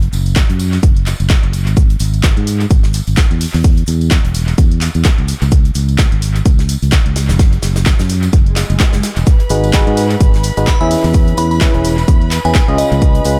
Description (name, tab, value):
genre	piano house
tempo	128 BPM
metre	4/4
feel	swing 57% on 16ths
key	unclear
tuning	A4 = 436 Hz
part	fingered electric bass	bass	0.0-13.4 s	E1 to G#2	-17 LUFS	equal	sidechain pumping
part	gated 80s drum kit	drums	0.0-13.4 s	hi-hat, shaker, snare drum	-31 LUFS	equal	sidechain pumping on hats, high-pass filter on hats, high-pass filter on snare, sidechain pumping on perc, high-pass filter on perc, high-pass filter on room, analog delay
part	punchy analog drum machine	drums	0.0-13.4 s	handclaps, hi-hat	-24 LUFS	equal	overdrive, analog delay
part	tambourine	percussion	0.1-13.4 s	none	-34 LUFS	equal	analog delay
part	electronic kick drum	drums	0.4-13.1 s	none	-13 LUFS	equal	none
part	swell	sound effects	8.5-9.3 s	none	-27 LUFS	equal	none
part	warm chamber violin section	sustained chords	9.3-13.4 s	B4 to B5	-27 LUFS	equal	sidechain pumping
part	barking FM electric piano	riff	9.5-13.4 s	C#3 to E5	-19 LUFS	equal	chorus, sidechain pumping, analog delay
part	glassy synth bell	melody	10.7-13.4 s	D#5 to B5	-23 LUFS	equal	chorus, phaser, analog delay
room	little or no reverb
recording	echo-heavy mix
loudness	-13 LUFS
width	mono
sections	0.0-13.4 A section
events	swell 8.5-9.3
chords	0.0 N.C.; 5.3 C#5; 7.4 N.C.; 9.3 G#m7; 10.9 E6; 12.8 C#7